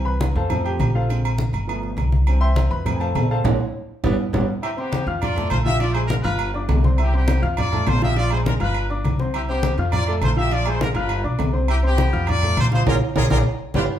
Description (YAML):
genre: latin, salsa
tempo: 204 BPM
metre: 4/4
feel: straight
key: C major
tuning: A4 = 439 Hz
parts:
  - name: clear baby grand piano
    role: accompaniment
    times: 0.0-13.8 s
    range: D3 to F6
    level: -26 LUFS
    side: left 1 dB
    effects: none
  - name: upright bass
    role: bass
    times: 0.0-13.9 s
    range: G1 to F2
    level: -21 LUFS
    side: equal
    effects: none
  - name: congas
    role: percussion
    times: 0.1-13.8 s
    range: none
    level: -26 LUFS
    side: left 1 dB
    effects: none
  - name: agogo bells and timbales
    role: percussion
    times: 0.2-13.8 s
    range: none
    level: -29 LUFS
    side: right 6 dB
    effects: none
  - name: bright trumpet section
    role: melody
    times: 4.6-13.8 s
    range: B3 to E5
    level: -26 LUFS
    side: equal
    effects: none
room: wet large studio reverb, RT60 0.8 s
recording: band playing live in one room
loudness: -18 LUFS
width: side -10 dB against mid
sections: 0.0-4.6 A section; 4.6-14.0 B section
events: grand piano solo 0.0-4.6; band accent 3.5-4.6, 12.9-14.0; drum fill 3.7-4.6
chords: 0.0 C; 0.5 F; 1.1 Bb7; 1.7 G7; 2.3 C; 2.9 F; 3.5 Bb7; 4.0 G; 4.6 C; 5.2 F; 5.8 Bb7; 6.4 G5; 7.0 C; 7.6 F; 8.2 Bb7; 8.8 G5; 9.3 C; 9.9 F; 10.5 Bb7; 11.1 G7; 11.7 C; 12.3 F; 12.9 Bb7; 13.5 G